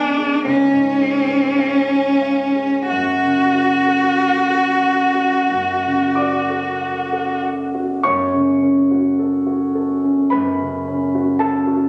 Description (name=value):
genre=classical, romantic duo for cello and grand piano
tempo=42-56 BPM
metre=4/4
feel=rubato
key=F# minor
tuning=A4 = 440 Hz
part: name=rich cello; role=melody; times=0.0-7.4 s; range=C#4 to F#4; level=-19 LUFS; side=equal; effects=none
part: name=warm grand piano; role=accompaniment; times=0.0-11.9 s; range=B1 to D6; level=-20 LUFS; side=equal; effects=none
room=moderate concert hall reverb, RT60 2.4 s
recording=recorded on a phone in the room, studio reverb, compression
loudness=-18 LUFS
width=mono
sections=0.0-8.0 A section; 8.0-11.9 A section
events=none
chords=0.5 C#7; 2.9 F#m